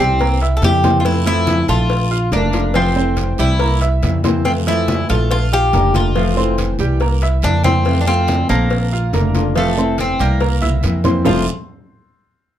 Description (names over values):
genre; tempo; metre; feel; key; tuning
latin, Cuban son and guajira; 141 BPM; 4/4; straight; F major; A4 = 440 Hz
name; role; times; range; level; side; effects
Cuban tres; melody; 0.0-11.5 s; A3 to A4; -19 LUFS; left 1 dB; none
flamenco guitar; accompaniment; 0.0-11.4 s; F2 to F4; -22 LUFS; left 3 dB; none
bright baby grand piano; arpeggios; 0.0-11.5 s; F3 to F6; -22 LUFS; right 3 dB; none
upright bass; bass; 0.0-11.5 s; F1 to F2; -17 LUFS; equal; none
congas; percussion; 0.2-11.4 s; none; -24 LUFS; left 1 dB; none
cowbell and bongos; percussion; 0.2-11.4 s; none; -27 LUFS; left 5 dB; none
guiro; percussion; 0.2-11.4 s; none; -33 LUFS; right 8 dB; none
room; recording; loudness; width
little or no reverb; close, detailed microphones; -13 LUFS; side -11 dB against mid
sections
0.0-11.3 A section; 11.3-12.6 B section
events
drum fill 10.6-11.3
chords
0.2 C7; 1.1 Fmaj7; 1.9 Bbmaj7; 2.8 Fmaj7; 3.6 C7; 4.5 Fmaj7; 5.3 Bbmaj7; 6.2 Fmaj7; 7.0 C7; 7.9 Fmaj7; 8.7 Bbmaj7; 9.6 Fmaj7; 10.4 C7; 11.3 Fmaj7